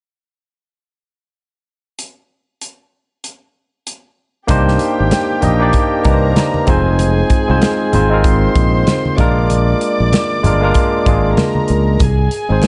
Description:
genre	lush 1970s-style soul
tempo	96 BPM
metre	4/4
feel	swing 58% on 16ths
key	C minor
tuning	A4 = 442 Hz
part	modern studio drum kit	drums	2.0-12.7 s	hi-hat, kick drum, snare drum	-19 LUFS	equal	none
part	warm chamber string section	second line	4.5-12.7 s	G4 to D6	-23 LUFS	equal	none
part	barky tine electric piano	accompaniment	4.5-12.7 s	Ab3 to Eb5	-18 LUFS	equal	overdrive
part	modern bright fingered electric bass	bass	4.5-12.6 s	F1 to Db2	-18 LUFS	equal	none
part	congas	percussion	4.5-12.7 s	none	-24 LUFS	equal	none
room	light reverb, small room ambience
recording	nothing above 10.6 kHz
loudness	-14 LUFS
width	mono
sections	2.0-4.5 A section; 4.5-12.7 B section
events	none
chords	2.0 N.C.; 4.5 Cm9; 6.7 Fm7; 9.2 Bb7; 12.0 Ab

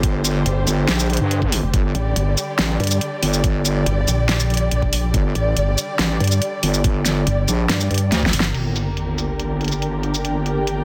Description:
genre	heavy wobble dubstep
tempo	141 BPM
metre	4/4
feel	half-time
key	G minor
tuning	A4 = 440 Hz
part	dark studio string section	sustained chords	0.0-10.8 s	D3 to D5	-28 LUFS	equal	sidechain pumping, low-pass filter
part	wobble bass	bass	0.0-10.8 s	G1 to G2	-23 LUFS	equal	chorus, overdrive
part	dubstep drum kit	drums	0.0-10.8 s	crash cymbal, hi-hat, shaker, snare drum	-24 LUFS	equal	overdrive, low-pass filter on hats, small room ambience, low-pass filter on cymbals, low-pass filter on perc, low-pass filter on snare
part	electronic kick drum	drums	0.0-8.3 s	none	-22 LUFS	equal	overdrive, small room ambience
part	pulsing pluck wobble bass	bass	0.5-8.5 s	F1 to G2	-21 LUFS	equal	chorus, overdrive
part	sub drop	sound effects	8.5-10.2 s	none	-31 LUFS	equal	none
part	ethereal airy pad	texture	9.3-10.8 s	D4 to G5	-29 LUFS	equal	ensemble chorus, built-in reverb, sidechain pumping
room	digital ambience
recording	none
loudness	-20 LUFS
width	mono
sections	0.0-8.5 A section; 8.5-10.8 B section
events	drop 0.0-8.5; drum fill 8.1-8.5; impact 8.5-10.2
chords	0.0 G5; 8.5 Gm

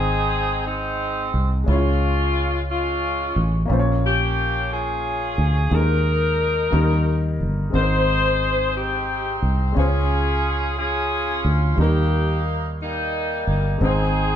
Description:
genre	slow gospel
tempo	59 BPM (dotted quarters)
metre	6/8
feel	straight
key	Ab major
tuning	A4 = 440 Hz
part	bright saxophone section	melody	0.0-14.4 s	G3 to C5	-23 LUFS	left 1 dB	none
part	warm concert grand piano	accompaniment	0.0-14.4 s	Ab2 to Eb5	-27 LUFS	left 2 dB	none
part	fingered electric bass	bass	0.0-14.4 s	G1 to Eb2	-22 LUFS	right 1 dB	none
room	moderate stone room reverb, RT60 1.1 s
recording	band playing live in one room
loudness	-18 LUFS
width	side -10 dB against mid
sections	0.0-14.4 A section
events	none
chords	0.0 Ab; 1.7 Db; 3.7 Bbm; 5.7 Ebsus4; 6.7 Eb; 7.7 Ab; 9.8 Db; 11.8 Eb; 13.8 Ab

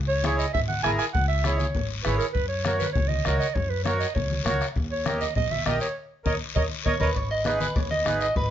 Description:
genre	latin, cumbia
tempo	200 BPM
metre	4/4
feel	straight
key	G# minor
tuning	A4 = 442 Hz
part	upright bass	bass	0.0-8.5 s	G#1 to F#2	-28 LUFS	equal	none
part	breathy clarinet	second line	0.1-7.1 s	A#4 to G#5	-28 LUFS	right 4 dB	none
part	accordion	accompaniment	0.2-8.3 s	D#4 to D#5	-28 LUFS	right 1 dB	none
part	bombo	percussion	0.2-8.5 s	none	-30 LUFS	left 2 dB	none
part	congas	percussion	0.2-8.5 s	none	-33 LUFS	left 2 dB	none
part	guiro	percussion	0.2-8.5 s	none	-36 LUFS	left 8 dB	none
part	electric guitar at the edge of break-up	melody	6.9-8.5 s	B4 to D#5	-26 LUFS	right 1 dB	spring reverb, plate reverb
room	light reverb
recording	nothing above 7.7 kHz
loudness	-23 LUFS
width	side -10 dB against mid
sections	0.0-7.2 A section; 7.2-8.5 B section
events	clarinet solo 0.0-7.2; band accent 6.0-7.2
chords	0.0 C#m; 2.4 F#; 4.8 D#7; 7.2 G#m

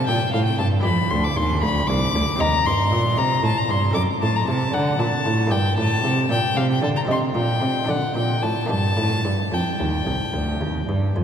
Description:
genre	classical, baroque-style sonata movement with continuo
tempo	72-78 BPM (dotted quarters)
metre	12/8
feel	straight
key	G minor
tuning	A4 = 440 Hz
part	warm violin	melody	0.0-11.2 s	F5 to D6	-23 LUFS	left 3 dB	none
part	buff-stop harpsichord	accompaniment	0.0-11.2 s	C2 to Eb5	-28 LUFS	equal	none
part	rich cello	bass	0.0-11.2 s	C2 to D3	-21 LUFS	right 1 dB	none
room	wet cathedral reverb, RT60 5.4 s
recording	none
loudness	-19 LUFS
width	side -8 dB against mid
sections	0.0-11.2 A section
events	none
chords	0.0 Gm; 0.9 G7; 2.4 Cm/Eb; 4.0 D7/F#; 5.5 Gm; 7.1 Cm; 7.9 D5; 8.7 G5

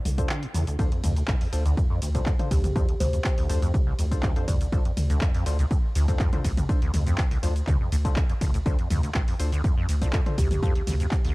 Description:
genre	acid house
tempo	122 BPM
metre	4/4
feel	straight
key	D minor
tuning	A4 = 440 Hz
part	deep acid bass	riff	0.1-11.3 s	D1 to D3	-28 LUFS	equal	tube saturation, ensemble chorus
part	saturated sub bass	bass	0.1-11.1 s	C2 to D2	-26 LUFS	equal	sidechain pumping
part	punchy analog drum machine	drums	0.1-11.3 s	cabasa, handclaps, hi-hat, ride cymbal, toms	-33 LUFS	equal	none
part	percussive organ stab	stabs	0.2-10.7 s	D4 to C5	-38 LUFS	left 3 dB	chorus, phaser, tape echo
part	electronic kick drum	drums	0.2-11.2 s	none	-24 LUFS	equal	none
part	kalimba	melody	2.5-5.2, 10.4-10.6 s	G4 to D5	-35 LUFS	equal	tape echo
room	little or no reverb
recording	dark, warm production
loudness	-22 LUFS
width	side -22 dB against mid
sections	0.0-11.3 A section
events	none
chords	0.0 Dm7

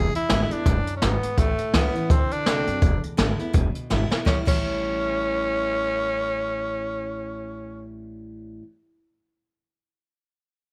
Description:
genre	rockabilly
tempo	167 BPM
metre	4/4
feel	swing 59% on 8ths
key	A mixolydian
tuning	A4 = 440 Hz
part	raspy tenor saxophone	melody	0.0-7.9 s	A3 to G#4	-28 LUFS	equal	plate reverb
part	picked steel-string acoustic guitar	accompaniment	0.0-8.6 s	E2 to F#4	-32 LUFS	equal	none
part	upright bass	bass	0.0-8.6 s	E1 to F#2	-30 LUFS	equal	none
part	jazz brush drum kit	drums	0.1-4.6 s	crash cymbal, hi-hat, kick drum, snare drum	-26 LUFS	equal	none
room	light reverb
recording	none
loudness	-23 LUFS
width	mono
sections	0.0-4.3 A section; 4.3-7.1 B section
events	drum fill 3.9-4.3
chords	0.0 E7; 1.4 A7; 2.1 D7; 2.8 E7; 4.3 A7

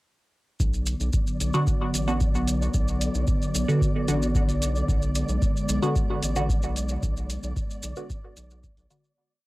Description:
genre	dub techno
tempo	112 BPM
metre	4/4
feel	straight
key	B dorian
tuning	A4 = 436 Hz
part	airy breathy pad	sustained chords	0.6-9.1 s	D3 to B3	-30 LUFS	equal	chorus, sidechain pumping, cassette tape
part	round analog bass	bass	0.6-8.9 s	A1 to B1	-28 LUFS	equal	sidechain pumping
part	electronic kick drum	drums	0.6-8.7 s	none	-26 LUFS	equal	cassette tape
part	maracas	percussion	0.6-9.1 s	none	-35 LUFS	equal	none
part	flickering grainy texture	texture	1.0-9.2 s	D5	-37 LUFS	equal	built-in reverb, sidechain pumping, cassette tape
part	electronic hi-hat	drums	0.9-9.0 s	none	-37 LUFS	right 1 dB	cassette tape
part	filtered dub chord stab	stabs	1.5-9.1 s	D3 to F#4	-27 LUFS	equal	phaser, sidechain pumping, cassette tape, dub echo
room	moderate small room ambience, RT60 0.5 s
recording	home recording on cassette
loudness	-22 LUFS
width	side -19 dB against mid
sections	0.6-9.2 groove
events	fade-out 6.3-9.2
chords	0.6 Bm

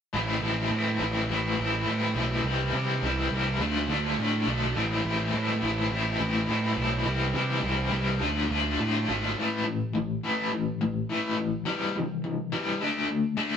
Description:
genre	rock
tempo	104 BPM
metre	4/4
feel	straight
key	A minor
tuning	A4 = 440 Hz
part	cranked stack guitar	riff	0.1-13.6 s	A2 to F4	-26 LUFS	left 2 dB	overdrive, tremolo
part	fuzz picked electric bass	bass	0.1-9.3 s	G#1 to C3	-29 LUFS	right 2 dB	overdrive
room	moderate studio reverb, RT60 0.7 s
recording	band playing live in one room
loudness	-25 LUFS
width	side -8 dB against mid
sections	0.1-9.4 A section; 9.4-13.6 B section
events	none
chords	0.1 Am; 2.5 C; 3.6 Dm; 4.8 Am; 7.1 C; 8.2 Dm; 9.4 A5; 11.7 C; 12.8 D5

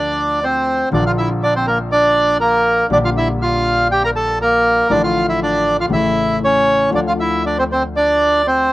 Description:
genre	tango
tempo	120 BPM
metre	4/4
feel	rubato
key	D minor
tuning	A4 = 440 Hz
part	bandoneon	melody	0.0-8.7 s	Bb3 to Bb5	-14 LUFS	right 1 dB	none
part	warm grand piano	accompaniment	0.0-8.7 s	A1 to G4	-22 LUFS	left 3 dB	slapback echo
part	upright bass	bass	0.0-8.7 s	A1 to D2	-26 LUFS	right 1 dB	none
room	little or no reverb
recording	recorded outdoors, with no room sound, nothing above 10.4 kHz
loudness	-13 LUFS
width	side -18 dB against mid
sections	0.0-8.7 A section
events	none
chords	0.0 Dm; 0.9 Bb; 2.9 Gm/Bb; 4.9 Dm/A; 5.9 A; 6.9 Dm

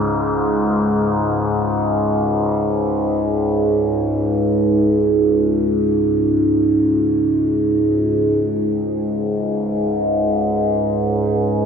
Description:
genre	ambient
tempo	free time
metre	none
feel	none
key	unclear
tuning	A4 = 444 Hz
part	overtone-sweeping drone	solo	0.0-11.7 s	C#2 to G#2	-16 LUFS	equal	chorus, built-in reverb, tape echo
room	wet cathedral reverb, RT60 5.6 s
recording	none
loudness	-16 LUFS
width	side -6 dB against mid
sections	0.0-8.4 A section; 8.4-11.7 B section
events	none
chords	0.0 C#5

